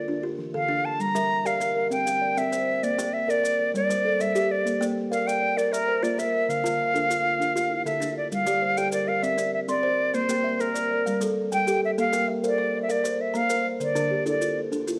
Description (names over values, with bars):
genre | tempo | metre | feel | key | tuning
southern african traditional, mbira-style interlocking cycle | 131 BPM (dotted quarters) | 12/8 | straight | G dorian | A4 = 439 Hz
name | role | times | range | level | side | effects
bright concert flute | melody | 0.0-14.6 s | Bb4 to Bb5 | -27 LUFS | equal | none
buzzing kalimba | arpeggios | 0.0-15.0 s | D3 to G5 | -30 LUFS | equal | none
buzzing kalimba | arpeggios | 0.0-15.0 s | D3 to C6 | -34 LUFS | equal | none
maracas | percussion | 1.0-15.0 s | none | -42 LUFS | equal | none
room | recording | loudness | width
moderate recital hall reverb, RT60 1.4 s | dark, warm production | -25 LUFS | mono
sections
0.0-8.3 A section; 8.3-15.0 B section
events
none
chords
0.0 Dm; 1.0 Gm; 1.9 C; 2.8 Bb; 3.7 G5; 4.7 Bb; 6.5 Dm; 8.3 Gm; 9.2 C; 10.1 Bb; 11.1 G5; 12.0 Bb; 13.8 Dm